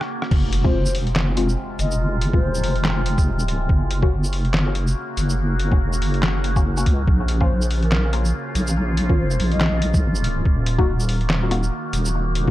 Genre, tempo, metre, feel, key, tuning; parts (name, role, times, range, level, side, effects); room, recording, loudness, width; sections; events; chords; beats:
deep dubstep; 142 BPM; 4/4; swing 57% on 16ths, half-time; F phrygian; A4 = 440 Hz
overtone-sweeping drone; sustained chords; 0.0-12.5 s; C3 to Gb4; -28 LUFS; equal; chorus, built-in reverb
trip hop sampler-style drum kit; drums; 0.0-12.4 s; crash cymbal, handclaps, hi-hat, rim click, shaker, snare drum; -26 LUFS; equal
deep soft wobble bass; bass; 0.3-12.5 s; Eb1 to Db2; -21 LUFS; equal; chorus
electronic kick drum; drums; 0.3-12.5 s; -19 LUFS; equal
impact; sound effects; 0.3-2.0 s; -28 LUFS; equal
mellow low ney; melody; 0.6-2.8, 7.4-9.9 s; Bb4 to Eb5; -31 LUFS; left 2 dB; dub echo
filtered dub chord stab; stabs; 0.6-12.5 s; Ab3 to Gb4; -28 LUFS; left 4 dB; phaser, dub echo
digital ambience; dark, warm production; -18 LUFS; side -15 dB against mid
0.3-12.5 A section
break 0.0-0.3; drum fill 0.0-0.3; drop 0.3-12.5; impact 0.3-2.0
0.3 Fm; 3.7 Gb; 7.1 Bbm; 10.5 Ebm
| 0.31 0.74 1.16 1.58 | 2.00 2.43 2.85 3.27 | 3.69 4.12 4.54 4.96 | 5.38 5.81 6.23 6.65 | 7.07 7.50 7.92 8.34 | 8.76 9.19 9.61 10.03 | 10.45 10.88 11.30 11.72 | 12.14